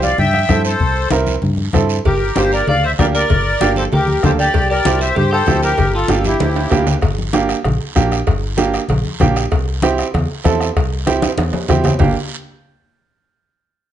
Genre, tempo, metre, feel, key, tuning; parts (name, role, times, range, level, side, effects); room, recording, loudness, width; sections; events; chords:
latin, cumbia; 193 BPM; 4/4; straight; G dorian; A4 = 440 Hz
accordion; melody; 0.0-6.8 s; E4 to G5; -17 LUFS; left 1 dB; light tremolo tuning, slapback echo
bright upright piano; accompaniment; 0.0-12.1 s; Bb3 to Bb4; -19 LUFS; right 5 dB
fingered electric bass; bass; 0.0-12.1 s; G1 to G2; -19 LUFS; equal
congas; percussion; 0.0-12.1 s; -22 LUFS; left 2 dB
guiro; percussion; 0.0-12.1 s; -30 LUFS; right 7 dB
bombo; percussion; 0.3-12.1 s; -19 LUFS; left 3 dB
clean electric guitar; second line; 2.1-6.8 s; D4 to D5; -24 LUFS; left 2 dB
cowbell and timbales; percussion; 2.1-12.1 s; -25 LUFS; right 5 dB
light reverb; nothing above 10.7 kHz; -13 LUFS; side -11 dB against mid
0.0-7.0 A section; 7.0-12.0 B section; 12.0-13.2 C section
drum fill 6.3-7.0, 11.2-12.0
0.0 C; 2.0 Gm; 4.5 C; 5.8 Gm; 9.5 C; 12.0 Gm